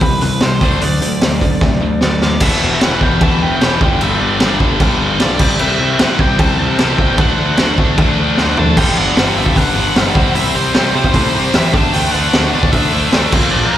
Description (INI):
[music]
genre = punk rock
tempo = 151 BPM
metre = 4/4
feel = straight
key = G major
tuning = A4 = 441 Hz
[part]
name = nasal lead guitar with a parked wah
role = melody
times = 0.0-13.8 s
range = Bb4 to A5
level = -21 LUFS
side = right 2 dB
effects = overdrive, ping-pong delay
[part]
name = distorted electric guitar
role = riff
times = 0.0-13.8 s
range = E2 to D4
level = -18 LUFS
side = left 10 dB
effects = overdrive, slapback echo
[part]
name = distorted electric guitar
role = riff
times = 0.0-13.8 s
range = G2 to E4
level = -20 LUFS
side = right 12 dB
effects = overdrive
[part]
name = overdriven picked electric bass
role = bass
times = 0.0-13.8 s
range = E1 to C3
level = -19 LUFS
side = right 1 dB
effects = none
[part]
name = raw garage drum kit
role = drums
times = 0.0-13.4 s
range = crash cymbal, hi-hat, kick drum, snare drum, toms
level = -14 LUFS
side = equal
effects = none
[sound]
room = little or no reverb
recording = live gig heard through the venue's PA, recital hall reverb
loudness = -11 LUFS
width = side -11 dB against mid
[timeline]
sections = 0.0-2.4 A section; 2.4-8.8 B section; 8.8-13.8 C section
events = drum fill 1.6-2.4, 8.4-8.8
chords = 0.0 C5; 0.6 D; 2.4 Em; 3.8 G; 5.4 C; 7.2 D; 8.8 G; 10.2 C; 11.7 D